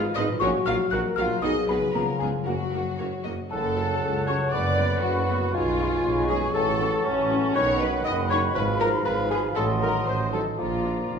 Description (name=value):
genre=cinematic, playful, whimsical film cue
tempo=118 BPM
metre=2/4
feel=straight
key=F# major, F# minor from 3.5 s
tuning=A4 = 440 Hz
part: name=small celesta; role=melody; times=0.0-11.1 s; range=C#5 to F#6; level=-31 LUFS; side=left 6 dB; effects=none
part: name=dark French horn section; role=sustained chords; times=0.0-10.9 s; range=F3 to A#4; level=-33 LUFS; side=left 3 dB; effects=none
part: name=concert harp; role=arpeggios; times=0.0-11.2 s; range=F#2 to C#6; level=-32 LUFS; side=left 5 dB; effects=none
part: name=muted studio violin section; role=second line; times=0.1-11.1 s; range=C#4 to F#5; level=-32 LUFS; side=left 1 dB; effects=none
part: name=muted chamber violin section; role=melody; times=0.2-11.1 s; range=C#4 to D#5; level=-35 LUFS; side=left 2 dB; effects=none
part: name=muted studio viola section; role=accompaniment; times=0.2-10.9 s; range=F3 to F#4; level=-35 LUFS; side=right 3 dB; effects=none
part: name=clear tuba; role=bass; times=0.2-11.2 s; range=F1 to C#2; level=-33 LUFS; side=right 4 dB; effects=none
part: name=muted chamber cello section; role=bass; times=0.2-11.2 s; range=C#2 to F#4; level=-33 LUFS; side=right 2 dB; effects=none
part: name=muted chamber double bass section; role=bass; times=0.2-11.2 s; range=F1 to F#2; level=-33 LUFS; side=right 4 dB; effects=none
part: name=clear oboe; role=second line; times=3.5-11.2 s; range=D5 to A5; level=-34 LUFS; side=right 3 dB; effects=none
part: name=hollow concert flute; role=second line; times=3.5-11.2 s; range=A5 to C#6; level=-33 LUFS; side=equal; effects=none
part: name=mellow clarinet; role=second line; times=3.5-11.1 s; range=C#4 to D#5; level=-29 LUFS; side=left 1 dB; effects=none
part: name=warm bassoon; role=accompaniment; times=3.5-11.2 s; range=D#3 to C#4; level=-32 LUFS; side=right 2 dB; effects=none
room=wet recital hall reverb, RT60 1.4 s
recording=recorded in a church or concert hall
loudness=-22 LUFS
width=side -6 dB against mid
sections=0.0-3.5 A section; 3.5-11.2 B section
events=none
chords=0.4 F#/A#; 1.4 G#m7/B; 1.9 C#7; 2.5 F#; 3.5 F#m; 4.5 Bm/F#; 5.5 C#7/B; 6.5 F#m/A; 7.6 B; 8.6 Fdim/Ab; 9.6 Adim7; 10.6 Bb